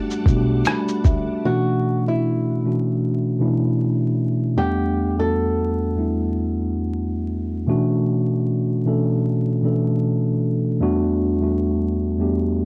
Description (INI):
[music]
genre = lo-fi hip hop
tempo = 77 BPM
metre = 4/4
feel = swing 60% on 16ths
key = B minor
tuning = A4 = 440 Hz
[part]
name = mellow tine electric piano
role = accompaniment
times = 0.0-12.7 s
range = E2 to B5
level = -22 LUFS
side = equal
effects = cassette tape, plate reverb
[part]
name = string machine, full ensemble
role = sustained chords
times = 0.0-1.4 s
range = G3 to D6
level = -39 LUFS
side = equal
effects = ensemble chorus, cassette tape, plate reverb
[part]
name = lo-fi sampler-style drum kit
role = drums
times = 0.1-1.3 s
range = hi-hat, kick drum, rim click, shaker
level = -21 LUFS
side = equal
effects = none
[part]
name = upright bass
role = bass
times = 0.3-1.3 s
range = B1 to D2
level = -25 LUFS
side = equal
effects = none
[part]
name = flamenco guitar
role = melody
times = 1.5-6.9 s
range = E4 to A4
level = -29 LUFS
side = equal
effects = cassette tape, plate reverb
[sound]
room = moderate studio reverb, RT60 0.5 s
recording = home recording on cassette, vinyl crackle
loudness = -21 LUFS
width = mono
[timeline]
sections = 0.0-1.4 A section; 1.4-12.7 B section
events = none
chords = 0.0 Em11; 1.4 Bm11; 4.6 Em11; 7.7 Bm11; 10.8 Em11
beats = 0.67 | 1.45 2.23 3.01 3.79 | 4.57 5.34 6.12 6.90 | 7.68 8.46 9.24 10.02 | 10.80 11.58 12.36